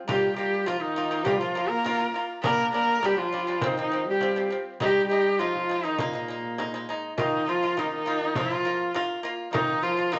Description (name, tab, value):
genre	mongolian traditional, Mongolian folk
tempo	101 BPM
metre	4/4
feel	straight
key	Bb zhi mode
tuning	A4 = 441 Hz
part	pipa	arpeggios	0.0-10.2 s	F3 to F4	-34 LUFS	equal	none
part	bright horsehead fiddle	melody	0.1-10.2 s	Bb3 to Bb4	-28 LUFS	equal	none
part	mellow trombone	second line	0.1-10.2 s	Bb2 to Bb3	-34 LUFS	equal	none
part	frame drum	percussion	0.1-10.2 s	none	-36 LUFS	equal	none
room	wet large studio reverb, RT60 0.9 s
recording	nothing above 8.0 kHz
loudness	-26 LUFS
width	mono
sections	0.0-7.2 A section; 7.2-10.2 B section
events	none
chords	0.1 Bb5; 2.4 G5; 3.6 F5; 4.8 Ab5; 7.2 Bb5